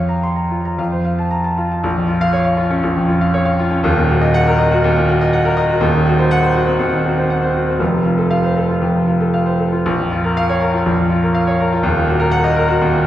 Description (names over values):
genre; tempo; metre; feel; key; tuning
classical, virtuoso piano study; 120 BPM; 4/4; uneven beats, rubato; Bb minor; A4 = 435 Hz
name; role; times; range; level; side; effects
clear grand piano; solo; 0.0-13.1 s; Eb1 to C6; -13 LUFS; equal; none
room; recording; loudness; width
wet recital hall reverb, RT60 1.4 s; recorded in a church or concert hall; -13 LUFS; side -12 dB against mid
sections
0.0-1.8 A section; 1.8-13.1 B section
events
none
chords
0.0 Bbm/F; 0.8 F; 1.8 Bbm; 3.8 Ebm; 5.8 Cdim/Eb; 7.8 F; 9.9 Bbm; 11.8 Ebm